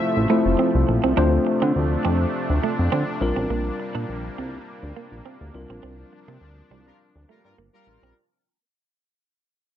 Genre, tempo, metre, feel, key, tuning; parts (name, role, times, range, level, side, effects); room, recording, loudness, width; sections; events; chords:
funk; 103 BPM; 4/4; straight; A4 = 440 Hz
tine electric piano; accompaniment; 0.0-7.8 s; G3 to C5; -24 LUFS; left 3 dB
warm analog pad; sustained chords; 0.0-8.1 s; C3 to E5; -28 LUFS; right 1 dB; chorus
chorused synth bass; bass; 0.2-8.1 s; F1 to D3; -23 LUFS; equal
semi-hollow electric guitar; riff; 0.3-8.1 s; G3 to D4; -27 LUFS; right 9 dB; analog chorus
analog synth brass; second line; 6.9-8.1 s; G3 to Bb4; -60 LUFS; equal; chorus
digital ambience; -19 LUFS; side -10 dB against mid
0.0-8.2 A section
fade-out 0.0-8.2; band accent 5.8-8.2
0.0 Fmaj7; 1.2 Dm7; 3.2 Bb69; 5.5 C9sus4